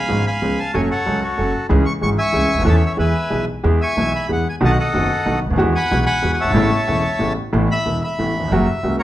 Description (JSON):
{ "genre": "tango", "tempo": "186 BPM", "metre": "3/4", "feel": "rubato", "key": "A major", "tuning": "A4 = 438 Hz", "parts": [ { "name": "bandoneon", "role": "melody", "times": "0.0-9.0 s", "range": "F#4 to C#6", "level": "-21 LUFS", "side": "left 1 dB", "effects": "none" }, { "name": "clear concert grand piano", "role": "accompaniment", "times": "0.1-9.0 s", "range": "E1 to A4", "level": "-19 LUFS", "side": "equal", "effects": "none" }, { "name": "upright bass", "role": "bass", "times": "0.1-9.0 s", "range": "E1 to E2", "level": "-21 LUFS", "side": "right 1 dB", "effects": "none" } ], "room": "moderate large studio reverb, RT60 1.2 s", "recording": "minimal, uncompressed stereo recording", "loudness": "-16 LUFS", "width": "side -14 dB against mid", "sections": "0.0-7.5 A section; 7.5-9.0 B section", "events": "none", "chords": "0.0 C#7; 0.7 F#m; 1.7 C#m; 2.7 A/E; 3.0 E; 4.6 B7; 5.6 Eadd9; 6.6 Aadd9; 7.5 Asus2; 8.5 F#" }